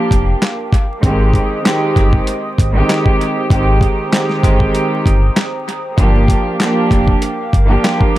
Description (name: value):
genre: hip hop, boom-bap hip-hop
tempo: 97 BPM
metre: 4/4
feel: swing 54% on 16ths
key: unclear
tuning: A4 = 440 Hz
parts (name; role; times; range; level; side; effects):
- warm studio string section; accompaniment; 0.0-8.2 s; Eb3 to G4; -16 LUFS; right 1 dB; high-pass filter, low-pass filter, dub echo
- hollow soft pad; sustained chords; 0.0-8.2 s; Bb4 to Eb6; -25 LUFS; right 1 dB; chorus, high-pass filter, low-pass filter
- sub bass with octave; bass; 0.1-7.8 s; F1 to Ab1; -14 LUFS; equal; none
- dusty soul sampler-style drum kit; drums; 0.1-8.2 s; handclaps, hi-hat, kick drum, snare drum; -15 LUFS; equal; dub echo
room: little or no reverb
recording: echo-heavy mix, vinyl crackle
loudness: -12 LUFS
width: side -15 dB against mid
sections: 0.0-8.2 A section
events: none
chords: 0.0 Gm7; 1.0 Abmaj7; 6.0 Gm7